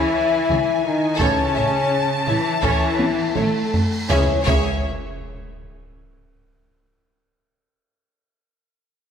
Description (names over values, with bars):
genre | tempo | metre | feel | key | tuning
cinematic, epic orchestral film score | 82 BPM | 4/4 | straight | C# minor | A4 = 440 Hz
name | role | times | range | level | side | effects
warm symphonic violin section | melody | 0.0-4.9 s | E5 to A5 | -27 LUFS | left 3 dB | none
warm symphonic violin section | second line | 0.0-4.9 s | E4 to E5 | -29 LUFS | left 2 dB | none
rich symphonic viola section | accompaniment | 0.0-4.9 s | G#4 to C#5 | -30 LUFS | right 3 dB | none
clear trombone section | sustained chords | 0.0-4.4 s | E3 to C#4 | -30 LUFS | right 4 dB | none
warm French horn section | sustained chords | 0.0-4.4 s | C#4 to C#5 | -22 LUFS | left 4 dB | none
rich symphonic cello section | bass | 0.0-4.9 s | C#3 to C#4 | -26 LUFS | right 2 dB | none
clear symphonic double bass section | bass | 0.5-4.9 s | A1 to C#2 | -28 LUFS | right 3 dB | none
taiko ensemble | drums | 0.5-5.9 s | none | -24 LUFS | equal | none
cymbal swell and sub drop | sound effects | 3.1-7.0 s | none | -34 LUFS | right 1 dB | none
timpani | percussion | 4.1-4.8 s | C#3 | -32 LUFS | right 1 dB | none
room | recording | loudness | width
wet scoring stage reverb, RT60 2.0 s | none | -17 LUFS | side -8 dB against mid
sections
0.0-4.1 A section; 4.1-7.0 B section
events
drum fill 3.0-4.1; cymbal swell 3.1-4.1; impact 4.1-7.0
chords
0.0 C#m; 1.2 A; 4.1 C#m